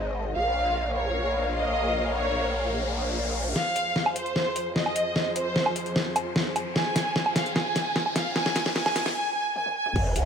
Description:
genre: heavy wobble dubstep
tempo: 150 BPM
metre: 4/4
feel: half-time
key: F minor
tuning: A4 = 441 Hz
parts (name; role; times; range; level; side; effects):
- warm symphonic string section; sustained chords; 0.0-9.1 s; F2 to F5; -33 LUFS; left 1 dB; sidechain pumping
- growl bass; bass; 0.0-3.5, 10.0-10.3 s; F1 to C2; -28 LUFS; equal; chorus, overdrive
- warm symphonic violin section; melody; 0.4-9.9 s; C5 to Ab5; -28 LUFS; right 1 dB; dub echo
- riser and sub drop; sound effects; 1.2-10.3 s; none; -37 LUFS; left 2 dB; none
- dubstep drum kit; drums; 3.6-10.2 s; crash cymbal, hi-hat, snare drum, toms, woodblock; -26 LUFS; equal; overdrive
- electronic kick drum; drums; 10.0 s; none; -27 LUFS; equal; overdrive
room: moderate lush hall reverb, RT60 2.4 s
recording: high-pass filter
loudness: -24 LUFS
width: side -7 dB against mid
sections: 0.0-3.6 A section; 3.6-10.0 B section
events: riser 1.2-3.6, 3.6-9.2; build-up 3.6-10.0; drum fill 3.6-9.2, 9.6-10.0; break 9.2-10.0; impact 10.0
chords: 0.4 Bbm; 3.6 Fm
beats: | 0.36 0.76 1.16 1.56 | 1.96 2.36 2.76 3.16 | 3.56 3.96 4.36 4.76 | 5.16 5.56 5.96 6.36 | 6.76 7.16 7.56 7.96 | 8.36 8.76 9.16 9.56 | 9.96

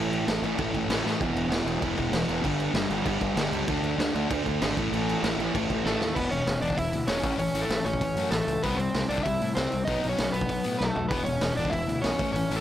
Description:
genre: punk rock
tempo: 194 BPM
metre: 4/4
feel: straight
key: unclear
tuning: A4 = 442 Hz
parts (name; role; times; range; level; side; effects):
- sludgy distorted guitar; riff; 0.0-12.6 s; E2 to D4; -30 LUFS; left 6 dB; overdrive
- sludgy distorted guitar; riff; 0.0-6.2 s; E2 to D4; -31 LUFS; right 13 dB; overdrive
- fuzz fingered electric bass; bass; 0.0-12.6 s; E1 to A2; -32 LUFS; equal; overdrive
- raw garage drum kit; drums; 0.1-12.6 s; crash cymbal, hi-hat, kick drum, snare drum, toms; -31 LUFS; equal; none
- overdriven semi-hollow guitar; melody; 5.9-12.6 s; A3 to E5; -29 LUFS; right 2 dB; none
room: little or no reverb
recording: none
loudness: -24 LUFS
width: side -11 dB against mid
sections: 0.0-6.2 A section; 6.2-12.6 B section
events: drum fill 1.1, 5.8-6.2, 10.8-11.1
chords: 0.0 A5; 1.2 E5; 2.4 G5; 3.7 D5; 4.8 A5; 6.2 E5; 7.2 A; 8.6 C; 9.9 B; 11.1 E5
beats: 0.28 0.59 0.90 | 1.21 1.52 1.83 2.14 | 2.45 2.76 3.07 3.38 | 3.69 3.99 4.30 4.61 | 4.92 5.23 5.54 5.85 | 6.16 6.46 6.77 7.08 | 7.39 7.70 8.01 8.32 | 8.63 8.94 9.25 9.56 | 9.87 10.18 10.49 10.80 | 11.11 11.42 11.73 12.04 | 12.35

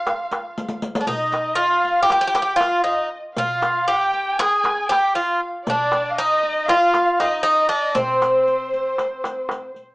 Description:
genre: Turkish makam ensemble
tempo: 236 BPM (eighths)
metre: 9/8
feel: straight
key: unclear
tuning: A4 = 441 Hz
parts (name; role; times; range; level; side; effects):
- Greek bouzouki; melody; 0.0-9.7 s; C4 to Ab4; -18 LUFS; equal; none
- dark studio violin section; second line; 0.0-9.8 s; C5 to Ab5; -25 LUFS; equal; none
- darbuka; percussion; 0.1-9.8 s; none; -27 LUFS; equal; none
- riq; percussion; 0.1-9.8 s; none; -30 LUFS; left 1 dB; none
room: moderate small room reverb, RT60 0.5 s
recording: worn, warbling old tape, cassette tape, warbly pitch drift, small speaker sound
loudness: -17 LUFS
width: side -24 dB against mid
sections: 0.0-9.9 A section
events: drum fill 0.6-1.1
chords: none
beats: 0.07 0.32 0.57 0.83 | 1.08 1.34 1.59 1.85 2.10 2.35 2.61 2.86 3.12 | 3.37 3.63 3.88 4.14 4.39 4.65 4.90 5.16 5.41 | 5.67 5.92 6.17 6.43 6.68 6.94 7.19 7.45 7.70 | 7.96 8.21 8.47 8.72 8.98 9.23 9.49 9.74

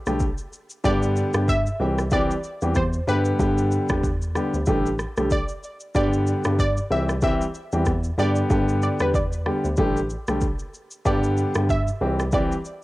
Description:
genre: afrobeats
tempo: 94 BPM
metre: 4/4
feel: swing 58% on 16ths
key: G major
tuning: A4 = 440 Hz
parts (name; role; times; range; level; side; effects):
- warm concert grand piano; accompaniment; 0.1-12.5 s; D3 to G4; -24 LUFS; equal; none
- bell-like tine electric piano; bass; 0.1-12.5 s; A1 to G2; -25 LUFS; equal; none
- afro-pop drum kit; drums; 0.1-12.8 s; kick drum, rim click, shaker; -27 LUFS; equal; vintage 12-bit sampler grit, cassette tape
- analog pluck; melody; 0.9-12.8 s; B4 to E5; -28 LUFS; equal; chorus, cassette tape, tape echo
room: little or no reverb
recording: home recording on cassette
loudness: -20 LUFS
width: side -18 dB against mid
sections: 0.0-12.8 A section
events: none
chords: 0.0 Dsus4; 0.8 G; 1.8 C; 3.1 G; 4.7 Dsus4/A; 5.9 G; 6.9 C; 8.2 G; 9.8 Dsus4/A; 11.1 G; 12.0 C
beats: 0.20 | 0.84 1.48 2.12 2.76 | 3.40 4.03 4.67 5.31 | 5.95 6.59 7.22 7.86 | 8.50 9.14 9.78 10.42 | 11.05 11.69 12.33

